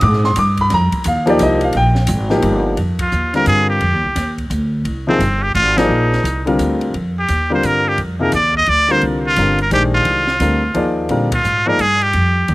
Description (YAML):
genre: modal jazz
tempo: 173 BPM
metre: 3/4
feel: swing 64% on 8ths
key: F dorian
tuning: A4 = 444 Hz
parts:
  - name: warm baby grand piano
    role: accompaniment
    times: 0.0-11.8 s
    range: C3 to D6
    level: -17 LUFS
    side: left 1 dB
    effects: slapback echo
  - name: upright bass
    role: bass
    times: 0.0-12.5 s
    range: G1 to Bb2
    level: -18 LUFS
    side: equal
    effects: none
  - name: open jazz drum kit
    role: drums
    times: 0.0-12.5 s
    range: hi-hat, kick drum, ride cymbal, snare drum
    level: -29 LUFS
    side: equal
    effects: none
  - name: trumpet with straight mute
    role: melody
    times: 3.0-12.5 s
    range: C4 to Eb5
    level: -16 LUFS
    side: equal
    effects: none
room: little or no reverb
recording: recorded outdoors, with no room sound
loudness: -13 LUFS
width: side -19 dB against mid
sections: 0.0-2.8 A section; 2.8-12.5 B section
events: band accent 3.0, 5.7, 11.3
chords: 0.0 F9sus4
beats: 0.01 0.36 | 0.70 1.05 1.40 | 1.74 2.09 2.43 | 2.78 3.12 3.47 | 3.82 4.16 4.51 | 4.86 5.20 5.55 | 5.89 6.24 6.59 | 6.93 7.28 7.63 | 7.97 8.32 8.67 | 9.02 9.36 9.71 | 10.06 10.40 10.75 | 11.10 11.45 11.79 | 12.14 12.49